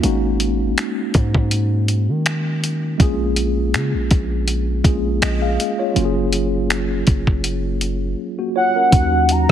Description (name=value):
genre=contemporary R&B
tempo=81 BPM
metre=4/4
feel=swing 54% on 16ths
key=F# major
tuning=A4 = 440 Hz
part: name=mellow tine electric piano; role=accompaniment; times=0.0-9.5 s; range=F#3 to E#5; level=-21 LUFS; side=equal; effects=medium stereo tremolo
part: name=warm 808-style bass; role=bass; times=0.0-9.5 s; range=F#1 to D#3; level=-20 LUFS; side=equal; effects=none
part: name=dusty soul sampler-style drum kit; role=drums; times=0.0-9.5 s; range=finger snaps, hi-hat, kick drum, rim click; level=-18 LUFS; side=equal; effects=none
part: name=warm velvety synth lead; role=melody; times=8.6-9.5 s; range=F#5 to A#5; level=-16 LUFS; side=right 1 dB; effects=chorus, tape echo
room=light reverb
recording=heavily compressed radio sound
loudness=-16 LUFS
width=side -10 dB against mid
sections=0.0-8.9 A section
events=silent gap 8.2-8.9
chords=0.0 G#7sus4; 3.0 A#m7; 6.0 F#maj7; 8.9 D#m7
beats=| 0.04 0.78 1.52 2.26 | 3.00 3.74 4.48 5.22 | 5.96 6.70 7.44 8.18 | 8.92